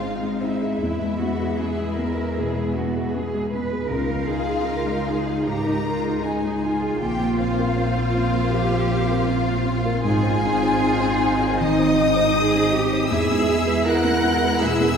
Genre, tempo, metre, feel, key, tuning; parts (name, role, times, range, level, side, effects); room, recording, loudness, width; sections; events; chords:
cinematic, emotional film score for orchestra; 78 BPM; 4/4; rubato; A4 = 440 Hz
rich studio violin section; melody; 0.0-15.0 s; Fb5 to Gb6; -28 LUFS; left 3 dB
rich studio violin section; second line; 0.0-15.0 s; Fb4 to Gb5; -28 LUFS; left 2 dB
felt-muted upright piano; accompaniment; 0.0-15.0 s; Db2 to C5; -26 LUFS; equal
warm studio viola section; accompaniment; 0.0-15.0 s; Ab3 to E4; -29 LUFS; right 2 dB
dark French horn section; sustained chords; 0.0-15.0 s; G#3 to F4; -27 LUFS; equal
clear studio double bass section; bass; 0.0-15.0 s; Ab1 to E2; -28 LUFS; right 1 dB
rich studio cello section; bass; 0.0-15.0 s; Eb4 to B4; -28 LUFS; right 3 dB
wet concert hall reverb, RT60 2.2 s; heard from further back in the room; -19 LUFS; side -7 dB against mid
0.0-15.0 A section
0.0 Ab; 0.8 E; 3.9 Dbadd9; 7.0 Bbsus2; 10.0 Ab; 13.1 E